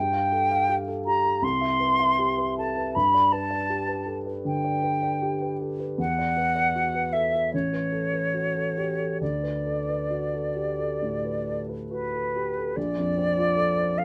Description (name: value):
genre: classical, impressionist duo for flute and grand piano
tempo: 65-83 BPM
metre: 4/4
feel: rubato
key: D mixolydian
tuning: A4 = 440 Hz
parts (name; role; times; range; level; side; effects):
- concert flute; melody; 0.0-14.0 s; B4 to C6; -27 LUFS; equal; none
- dark baby grand piano; accompaniment; 0.0-14.0 s; A1 to F5; -31 LUFS; equal; none
room: light reverb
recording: none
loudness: -26 LUFS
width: mono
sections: 0.0-12.8 A section; 12.8-14.0 B section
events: none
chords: 0.0 Gsus2; 1.4 Cmaj7; 2.9 Gadd9; 6.0 Esus2; 7.5 A13; 9.2 D6; 12.8 Bbmaj9